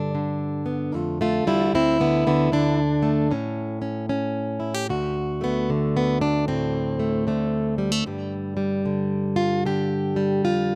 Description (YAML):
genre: acoustic country blues, solo or duo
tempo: 76 BPM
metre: 4/4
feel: swing 63% on 8ths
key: D mixolydian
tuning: A4 = 440 Hz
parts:
  - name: fingerpicked plugged-in acoustic archtop guitar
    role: solo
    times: 0.0-10.8 s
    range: D2 to G4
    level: -24 LUFS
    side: equal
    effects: none
room: little or no reverb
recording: recorded outdoors, with no room sound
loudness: -24 LUFS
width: mono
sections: 0.0-4.9 A section; 4.9-10.8 B section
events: steel-string acoustic guitar solo 4.9-10.8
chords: 0.0 G7; 1.7 D5; 3.3 A; 4.9 D7; 8.1 G5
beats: 0.14 0.93 | 1.73 2.52 3.31 4.10 | 4.89 5.68 6.47 7.27 | 8.06 8.85 9.64 10.43